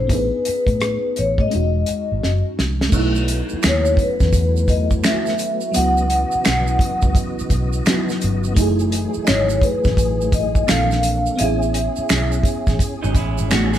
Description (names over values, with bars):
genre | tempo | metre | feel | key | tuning
R&B, neo-soul | 85 BPM | 4/4 | swing 64% on 16ths | unclear | A4 = 440 Hz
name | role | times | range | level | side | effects
vibraphone with soft mallets | melody | 0.0-12.8 s | B4 to F#5 | -21 LUFS | left 2 dB | none
FM electric piano with soft pad layer | accompaniment | 0.0-13.8 s | D#3 to A4 | -24 LUFS | right 1 dB | chorus
vintage muted fingered electric bass | bass | 0.0-13.8 s | E1 to A2 | -21 LUFS | equal | none
warm soul drum kit | drums | 0.1-13.8 s | crash cymbal, finger snaps, hi-hat, kick drum, rim click, snare drum | -20 LUFS | equal | none
percussive tonewheel organ | sustained chords | 2.9-13.8 s | C#3 to D#5 | -28 LUFS | left 2 dB | slow rotary speaker, chorus vibrato
tube shaker and finger snaps | percussion | 2.9-13.8 s | none | -33 LUFS | right 6 dB | none
electric guitar through a small old amp | second line | 13.0-13.8 s | F#3 to G#4 | -25 LUFS | right 5 dB | none
room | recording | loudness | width
light reverb | band playing live in one room | -16 LUFS | side -11 dB against mid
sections
0.0-2.9 A section; 2.9-13.8 B section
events
drum fill 2.2-2.9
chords
0.1 Amaj7; 1.5 Emaj9; 2.9 B9sus4; 5.7 C#m11; 8.6 F#m9; 10.7 A#maj7; 11.4 Amaj7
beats
| 0.09 0.80 1.50 2.21 | 2.92 3.62 4.33 5.03 | 5.74 6.45 7.15 7.86 | 8.56 9.27 9.97 10.68 | 11.39 12.09 12.80 13.51